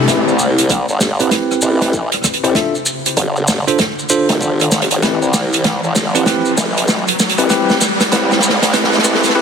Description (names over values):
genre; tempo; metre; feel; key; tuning
glitch hop; 97 BPM; 4/4; swing 63% on 16ths; A minor; A4 = 441 Hz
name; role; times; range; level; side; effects
bell-like tine electric piano; stabs; 0.0-9.4 s; C4 to E5; -17 LUFS; moving between left 8 dB and right 7 dB; auto-pan, sidechain pumping, low-pass filter, ping-pong delay
riser; sound effects; 0.0-9.4 s; none; -21 LUFS; right 1 dB; none
formant-sweep wobble bass; bass; 0.1-9.2 s; F1 to C2; -18 LUFS; equal; chorus, overdrive, high-pass filter
electronic kick drum; drums; 0.1-8.9 s; none; -24 LUFS; equal; overdrive, high-pass filter on kick, high-pass filter on room
warm soul drum kit; drums; 0.1-9.4 s; hi-hat, rim click, snare drum; -17 LUFS; right 1 dB; none
maracas; percussion; 0.1-9.3 s; none; -21 LUFS; equal; none
room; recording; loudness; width
moderate lush hall reverb, RT60 1.8 s, small room ambience; dense, heavily limited modern master, high-pass filter; -12 LUFS; side -6 dB against mid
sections
0.1-9.4 A section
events
build-up 0.1-9.4; drum fill 0.1-9.4; riser 0.1-9.4; filter sweep on tine electric piano 0.1-9.4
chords
0.1 Am9; 2.6 G9sus4; 5.0 Am9